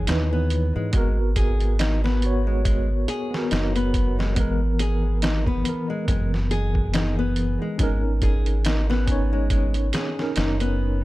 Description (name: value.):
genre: trip hop.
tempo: 70 BPM.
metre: 4/4.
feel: swing 57% on 16ths.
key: G# minor.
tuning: A4 = 439 Hz.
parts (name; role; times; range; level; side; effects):
mellow tine electric piano; accompaniment; 0.0-11.0 s; E3 to C#5; -28 LUFS; equal; medium stereo tremolo, tape echo.
nylon-string guitar; arpeggios; 0.0-11.0 s; G#3 to G#4; -29 LUFS; left 4 dB; tape echo.
deep dub fingered electric bass; bass; 0.0-11.0 s; F#1 to G#2; -23 LUFS; equal; none.
trip hop sampler-style drum kit; drums; 0.1-10.8 s; hi-hat, kick drum, snare drum; -25 LUFS; equal; none.
room: little or no reverb.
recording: none.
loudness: -20 LUFS.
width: side -18 dB against mid.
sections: 0.0-11.0 A section.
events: none.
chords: 0.0 C#m7; 0.9 G#m7; 4.4 F#7sus4/G#; 7.8 Bmaj7/G#.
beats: 0.08 | 0.94 1.79 2.65 3.51 | 4.37 5.22 6.08 6.94 | 7.79 8.65 9.51 10.37.